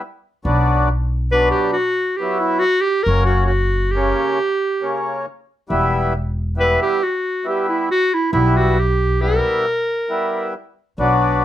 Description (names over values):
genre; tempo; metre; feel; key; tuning
klezmer; 68 BPM; 3/4; straight; E dorian sharp4; A4 = 439 Hz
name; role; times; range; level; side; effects
mellow accordion; accompaniment; 0.0-11.4 s; C#3 to E4; -20 LUFS; left 1 dB; none
upright bass; bass; 0.5-11.4 s; E1 to B1; -19 LUFS; equal; none
bright clarinet; melody; 1.3-10.5 s; E4 to B4; -18 LUFS; right 1 dB; none
room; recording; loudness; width
light reverb; none; -16 LUFS; side -12 dB against mid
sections
0.0-11.4 A section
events
none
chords
0.5 Bm; 3.1 F#; 5.7 Em